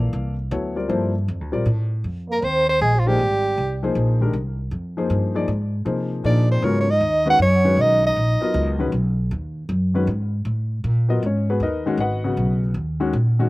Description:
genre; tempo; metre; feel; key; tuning
modal jazz; 157 BPM; 3/4; swing 67% on 8ths; unclear; A4 = 440 Hz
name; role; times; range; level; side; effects
dark grand piano; accompaniment; 0.0-13.5 s; Db3 to F#5; -24 LUFS; left 3 dB; none
upright bass; bass; 0.0-13.5 s; Ab1 to C3; -21 LUFS; equal; none
breathy soprano saxophone; melody; 2.3-3.8, 6.3-8.8 s; F4 to Gb5; -19 LUFS; right 1 dB; none
trombone with cup mute; second line; 2.3-3.8, 6.3-8.8 s; F3 to Gb4; -27 LUFS; right 3 dB; slapback echo
room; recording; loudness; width
little or no reverb; recorded outdoors, with no room sound; -18 LUFS; side -20 dB against mid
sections
0.0-2.0 A section; 2.0-11.2 B section; 11.2-13.5 C section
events
none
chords
0.0 Gm11; 2.0 Fm11; 6.6 Abm11; 11.2 G#m9

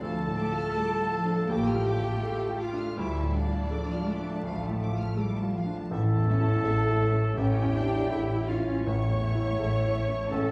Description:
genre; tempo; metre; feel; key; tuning
cinematic, emotional film score for orchestra; 82 BPM; 4/4; rubato; unclear; A4 = 439 Hz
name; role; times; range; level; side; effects
warm studio violin section; melody; 0.0-10.4 s; E5 to F6; -49 LUFS; equal; none
mellow clarinet; second line; 0.0-10.5 s; D4 to C#5; -36 LUFS; equal; none
warm studio violin section; second line; 0.0-10.5 s; D5 to C#6; -41 LUFS; equal; none
clear baby grand piano; accompaniment; 0.0-10.5 s; A1 to A4; -36 LUFS; equal; none
warm studio viola section; accompaniment; 0.0-10.5 s; D4 to C#5; -39 LUFS; equal; none
mellow French horn section; sustained chords; 0.0-10.5 s; F3 to C#5; -40 LUFS; equal; none
warm studio cello section; bass; 0.0-10.5 s; E3 to E4; -35 LUFS; equal; none
warm studio double bass section; bass; 0.0-10.5 s; A1 to D2; -32 LUFS; equal; none
room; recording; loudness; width
wet recital hall reverb, RT60 1.7 s; heard from further back in the room, vinyl crackle; -28 LUFS; mono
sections
0.0-10.5 A section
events
none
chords
0.0 Dm; 5.9 A

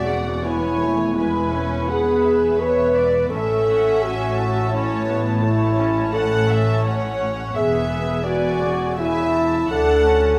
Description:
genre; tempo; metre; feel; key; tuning
cinematic, emotional film score for orchestra; 84 BPM; 3/4; rubato; A major; A4 = 440 Hz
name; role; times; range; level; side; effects
dark studio violin section; melody; 0.0-10.4 s; E5 to A5; -34 LUFS; equal; none
warm symphonic violin section; second line; 0.0-10.4 s; B4 to F#5; -29 LUFS; equal; none
dark chamber viola section; accompaniment; 0.0-10.4 s; C#3 to D4; -31 LUFS; equal; none
mellow French horn section; sustained chords; 0.0-10.4 s; E4 to B4; -22 LUFS; equal; none
dark studio cello section; bass; 0.0-10.4 s; D2 to A2; -31 LUFS; equal; none
warm symphonic double bass section; bass; 0.0-10.4 s; E1 to D2; -28 LUFS; equal; none
room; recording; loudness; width
wet scoring stage reverb, RT60 1.6 s; none; -20 LUFS; mono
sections
0.0-10.4 A section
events
none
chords
0.0 E; 3.3 A; 7.6 E; 9.7 D

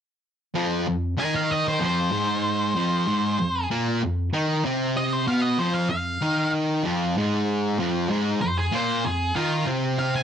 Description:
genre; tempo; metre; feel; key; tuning
rock; 96 BPM; 4/4; straight; unclear; A4 = 440 Hz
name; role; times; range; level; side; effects
fuzz guitar; riff; 0.5-10.2 s; F2 to Eb4; -23 LUFS; equal; distortion
octave-fuzz lead guitar; melody; 1.2-10.2 s; F4 to Ab5; -26 LUFS; equal; distortion
room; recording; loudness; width
moderate studio reverb, RT60 0.6 s; none; -22 LUFS; side -8 dB against mid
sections
0.6-10.2 A section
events
none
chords
0.6 F5

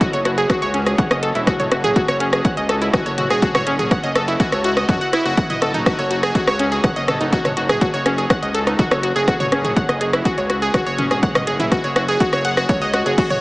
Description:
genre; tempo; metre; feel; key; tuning
melodic techno; 123 BPM; 4/4; straight; F# dorian; A4 = 440 Hz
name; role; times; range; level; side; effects
analog pluck; arpeggios; 0.0-13.4 s; C#4 to F#5; -18 LUFS; equal; chorus, sidechain pumping, diffuse ambient delay
gritty driven synth bass; bass; 0.0-13.2 s; E1 to F#2; -26 LUFS; equal; tube saturation, sidechain pumping
electronic kick drum; drums; 0.0-13.3 s; none; -20 LUFS; equal; overdrive
house drum kit; drums; 0.0-13.4 s; crash cymbal, hi-hat, rim click, toms; -22 LUFS; equal; overdrive, sidechain pumping on hats, sidechain pumping on toms, sidechain pumping on cymbals
room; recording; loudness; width
moderate huge ambient reverb, RT60 7.7 s; dreamy mix soaked in reverb, small speaker sound; -16 LUFS; side -21 dB against mid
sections
0.0-13.4 A section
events
none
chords
0.0 F#5; 5.4 F#sus2; 9.3 C#m

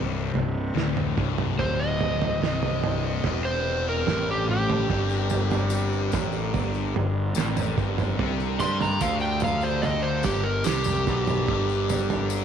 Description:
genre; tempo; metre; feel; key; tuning
psychedelic rock; 73 BPM; 4/4; straight; C mixolydian; A4 = 440 Hz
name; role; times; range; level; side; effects
hand-pumped harmonium; sustained chords; 0.0-12.4 s; D3 to Bb4; -36 LUFS; right 12 dB; none
thick fuzz guitar; riff; 0.0-12.4 s; C2 to G3; -29 LUFS; left 10 dB; distortion, phaser
fuzz picked electric bass; bass; 0.0-12.4 s; C1 to G2; -28 LUFS; equal; overdrive
tanpura; drone; 0.0-12.4 s; C2 to D3; -38 LUFS; left 1 dB; none
cloth-damped thuddy drum kit; drums; 0.4-12.3 s; kick drum, snare drum, toms; -29 LUFS; right 6 dB; none
overdriven slide guitar; melody; 1.6-12.3 s; G4 to C6; -28 LUFS; right 2 dB; tape echo
tambourine; percussion; 5.1-12.4 s; none; -41 LUFS; left 16 dB; none
room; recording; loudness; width
light reverb, small room ambience; 1960s-style stereo with parts hard left and right; -22 LUFS; side -8 dB against mid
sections
0.0-12.4 A section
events
electric slide guitar solo 0.0-12.4; drum fill 4.5-4.9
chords
0.0 C; 4.9 Gm

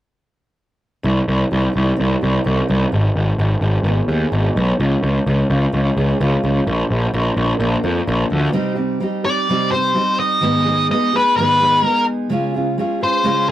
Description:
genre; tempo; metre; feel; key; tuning
rock; 128 BPM; 4/4; straight; C minor; A4 = 437 Hz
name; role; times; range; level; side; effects
fingerpicked steel-string acoustic guitar; arpeggios; 1.0-13.5 s; Ab2 to Bb4; -21 LUFS; right 1 dB; none
fuzz picked electric bass; bass; 1.0-8.5 s; Ab1 to F2; -16 LUFS; equal; overdrive
octave-fuzz lead guitar; melody; 9.3-13.5 s; Cb5 to Eb5; -15 LUFS; left 1 dB; distortion
room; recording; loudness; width
moderate booth ambience, RT60 0.2 s; rough rehearsal-room recording, warm saturation; -15 LUFS; side -13 dB against mid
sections
1.0-8.6 A section; 8.6-13.5 B section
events
none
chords
1.0 Cm; 2.9 Abm; 4.8 Db; 6.7 Bb; 8.6 Cm; 10.4 Abm; 12.3 Db

